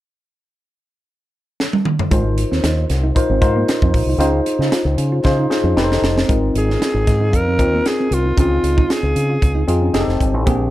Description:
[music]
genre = polished 1980s jazz-funk pop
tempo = 115 BPM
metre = 4/4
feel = swing 54% on 16ths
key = Ab major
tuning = A4 = 444 Hz
[part]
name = crisp fusion drum kit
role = drums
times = 1.6-10.6 s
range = hi-hat, kick drum, snare drum, toms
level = -19 LUFS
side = equal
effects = none
[part]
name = tine electric piano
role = accompaniment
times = 2.1-10.7 s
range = C4 to C5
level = -20 LUFS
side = left 1 dB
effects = lush chorus
[part]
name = mellow electric guitar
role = riff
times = 2.1-10.6 s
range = Ab3 to F4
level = -25 LUFS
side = right 3 dB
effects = wide subtle chorus
[part]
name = fingered electric bass with an envelope filter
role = bass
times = 2.1-10.7 s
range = F1 to Db3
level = -18 LUFS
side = equal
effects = none
[part]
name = breathy alto saxophone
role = melody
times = 6.6-9.7 s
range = F4 to Bb4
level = -20 LUFS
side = equal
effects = none
[sound]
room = little or no reverb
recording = none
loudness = -14 LUFS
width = side -15 dB against mid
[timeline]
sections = 0.0-2.1 A section; 2.1-6.3 B section; 6.3-10.7 C section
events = drum fill 1.6-2.1, 5.2-6.3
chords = 0.0 N.C.; 2.1 Ab6; 4.2 Dbmaj7; 5.8 F7; 6.3 Ab6; 8.4 Dbmaj7; 9.9 F7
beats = | 0.03 0.55 1.07 1.59 | 2.12 2.64 3.16 3.68 | 4.20 4.72 5.24 5.77 | 6.29 6.81 7.33 7.86 | 8.38 8.90 9.42 9.95 | 10.47

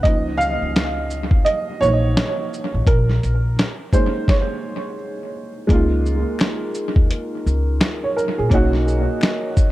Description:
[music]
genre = lo-fi hip hop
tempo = 85 BPM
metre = 4/4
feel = swing 61% on 16ths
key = Db major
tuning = A4 = 441 Hz
[part]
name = dark upright piano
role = accompaniment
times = 0.0-9.7 s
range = F3 to F5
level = -22 LUFS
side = right 2 dB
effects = analog delay
[part]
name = upright bass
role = bass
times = 0.0-9.0 s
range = A1 to Eb2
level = -20 LUFS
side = equal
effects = none
[part]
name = lo-fi sampler-style drum kit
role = drums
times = 0.0-9.7 s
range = hi-hat, kick drum, shaker, snare drum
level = -18 LUFS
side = equal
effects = analog delay
[part]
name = glass harmonica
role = sustained chords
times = 5.7-9.7 s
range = Eb4 to Eb5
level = -30 LUFS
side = left 3 dB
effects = stereo widening
[part]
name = finger snaps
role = percussion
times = 6.4-9.4 s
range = none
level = -36 LUFS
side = left 5 dB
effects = none
[sound]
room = light reverb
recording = echo-heavy mix, cassette tape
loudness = -17 LUFS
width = side -16 dB against mid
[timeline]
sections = 0.0-5.7 A section; 5.7-9.7 B section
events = upright piano solo 0.0-5.7; stop 4.3-5.7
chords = 0.0 Db69; 2.9 Bbm7; 5.7 Db69; 8.5 Cbmaj7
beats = | 0.04 0.75 1.45 2.16 | 2.87 3.57 4.28 4.98 | 5.69 6.39 7.10 7.81 | 8.51 9.22

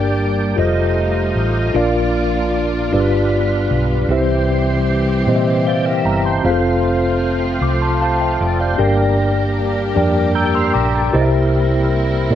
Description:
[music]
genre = slow gospel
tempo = 51 BPM (dotted quarters)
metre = 6/8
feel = straight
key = F major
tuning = A4 = 440 Hz
[part]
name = mellow tine electric piano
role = accompaniment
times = 0.0-12.3 s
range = G2 to G6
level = -17 LUFS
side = left 1 dB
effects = medium stereo tremolo
[part]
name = tonewheel organ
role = sustained chords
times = 0.0-12.3 s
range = E3 to G5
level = -24 LUFS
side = right 3 dB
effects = slow rotary speaker, overdrive, chorus vibrato
[part]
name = warm studio string section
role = sustained chords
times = 0.0-12.3 s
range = E3 to G4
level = -26 LUFS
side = right 1 dB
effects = none
[part]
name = hollow-body short-scale fingered electric bass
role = bass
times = 0.0-12.3 s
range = F1 to Bb2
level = -20 LUFS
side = equal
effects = none
[sound]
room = light reverb, digital ambience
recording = none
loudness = -14 LUFS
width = side -10 dB against mid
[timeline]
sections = 0.0-12.3 A section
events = tine electric piano fill 5.3-6.4, 10.0-11.1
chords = 0.0 Gm; 0.6 F9; 1.7 Bb; 2.9 G7; 4.1 C; 6.4 F; 8.8 Gm; 11.1 C7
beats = 0.57 | 1.75 2.92 | 4.10 5.27 | 6.45 7.62 | 8.80 9.97 | 11.14 12.32

